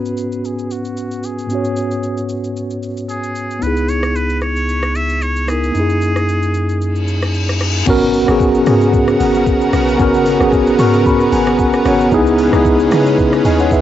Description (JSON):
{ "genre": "amapiano", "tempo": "113 BPM", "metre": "4/4", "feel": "swing 55% on 16ths", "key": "G# minor", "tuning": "A4 = 440 Hz", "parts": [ { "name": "trumpet with straight mute", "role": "melody", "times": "0.0-7.1 s", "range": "F#4 to E5", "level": "-24 LUFS", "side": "equal", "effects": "low-pass filter, cassette tape, analog delay" }, { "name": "mellow tine electric piano", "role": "accompaniment", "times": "0.0-13.8 s", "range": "G#2 to C#6", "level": "-15 LUFS", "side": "equal", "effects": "medium stereo tremolo, low-pass filter" }, { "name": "smooth R&B drum kit", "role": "drums", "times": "0.1-13.8 s", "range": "crash cymbal, hi-hat, kick drum, rim click, shaker", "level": "-22 LUFS", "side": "equal", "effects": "cassette tape" }, { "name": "round analog bass", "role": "bass", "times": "3.6-7.8 s", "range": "C#2 to F#2", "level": "-18 LUFS", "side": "equal", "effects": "none" }, { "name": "reverse cymbal and impact", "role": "sound effects", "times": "7.0-10.0 s", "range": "none", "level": "-24 LUFS", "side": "left 2 dB", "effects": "none" }, { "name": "lush unison pad", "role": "sustained chords", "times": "7.9-13.8 s", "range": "C#3 to A#4", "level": "-19 LUFS", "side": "equal", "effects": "chorus, sidechain pumping" }, { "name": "deep log drum bass", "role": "bass", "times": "7.9-13.8 s", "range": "G#1 to C#3", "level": "-19 LUFS", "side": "equal", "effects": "none" } ], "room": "light reverb", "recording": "home recording on cassette, nothing above 7.8 kHz", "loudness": "-13 LUFS", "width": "side -12 dB against mid", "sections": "0.0-7.9 A section; 7.9-13.8 B section", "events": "filter sweep 0.0-7.9; reverse cymbal 7.0-7.9; drop 7.9-13.8; impact 7.9-10.0; tine electric piano fill 10.5-12.1", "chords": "0.0 G#m7; 3.6 C#m7; 5.7 F#13; 7.9 G#m11; 12.1 C#m7" }